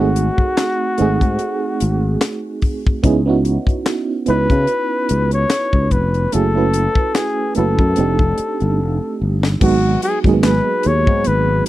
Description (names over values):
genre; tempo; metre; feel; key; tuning
R&B, neo-soul; 73 BPM; 4/4; swing 56% on 16ths; unclear; A4 = 440 Hz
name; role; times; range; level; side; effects
breathy flugelhorn; melody; 0.0-11.7 s; F#4 to C#5; -20 LUFS; left 2 dB; none
FM electric piano with tremolo; accompaniment; 0.0-11.7 s; F#3 to B4; -20 LUFS; right 5 dB; none
sustaining fretless electric bass; bass; 0.0-11.6 s; F1 to C#3; -18 LUFS; left 1 dB; none
tight funk drum kit; drums; 0.2-11.7 s; crash cymbal, handclaps, hi-hat, kick drum, snare drum; -18 LUFS; left 1 dB; none
room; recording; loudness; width
little or no reverb; dry, close 1970s-style studio recording; -14 LUFS; side -15 dB against mid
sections
0.0-9.6 A section; 9.6-11.7 B section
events
drum fill 8.8-9.6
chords
0.0 G#7b9; 3.0 C#m9; 6.3 F#m9; 8.0 F13; 9.6 G#m7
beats
0.57 1.39 2.21 | 3.03 3.85 4.68 5.50 | 6.32 7.14 7.96 8.79 | 9.61 10.43 11.25